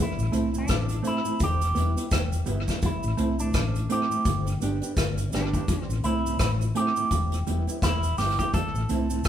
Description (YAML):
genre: roots reggae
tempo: 84 BPM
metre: 4/4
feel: swing 59% on 16ths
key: A minor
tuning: A4 = 440 Hz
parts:
  - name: electric guitar with an envelope filter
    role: melody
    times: 0.0-9.3 s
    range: D4 to A4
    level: -30 LUFS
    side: right 1 dB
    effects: none
  - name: mellow tonewheel organ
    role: accompaniment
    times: 0.2-9.2 s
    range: E2 to E4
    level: -37 LUFS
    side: left 3 dB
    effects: chorus vibrato, slow rotary speaker, tape echo
  - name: hollow-body short-scale fingered electric bass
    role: bass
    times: 0.2-9.3 s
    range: E1 to C2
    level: -28 LUFS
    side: left 1 dB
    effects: none
  - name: cabasa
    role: percussion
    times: 0.2-9.3 s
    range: none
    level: -40 LUFS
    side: right 5 dB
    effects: none
  - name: mellow electric guitar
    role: accompaniment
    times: 0.3-9.2 s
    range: G3 to G4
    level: -30 LUFS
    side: right 4 dB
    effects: none
  - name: soft brush drum kit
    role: drums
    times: 0.3-9.3 s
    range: hi-hat, kick drum, rim click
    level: -27 LUFS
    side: equal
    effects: tape echo
room: moderate large studio reverb, RT60 1.2 s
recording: band playing live in one room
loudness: -23 LUFS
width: side -10 dB against mid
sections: 0.0-9.3 A section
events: none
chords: 0.0 Am; 1.4 Em; 2.8 Am; 4.3 G; 5.7 Am; 7.1 Em; 8.5 Am